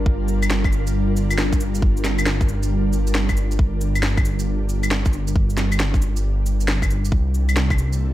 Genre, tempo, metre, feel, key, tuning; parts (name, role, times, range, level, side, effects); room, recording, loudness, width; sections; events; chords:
future garage; 136 BPM; 4/4; swing 65% on 16ths; G minor; A4 = 440 Hz
ethereal airy pad; sustained chords; 0.0-8.1 s; C3 to Bb4; -26 LUFS; right 1 dB; ensemble chorus, built-in reverb, sidechain pumping
dark detuned saw bass; bass; 0.0-8.1 s; G1 to C2; -21 LUFS; equal; sidechain pumping
electronic kick drum; drums; 0.1-7.8 s; -19 LUFS; equal; overdrive
electronic cabasa, shaker, claves and snare drum; drums; 0.3-8.0 s; -24 LUFS; equal
light reverb; -18 LUFS; side -14 dB against mid
0.1-8.1 A section
0.1 Gm7; 7.1 C13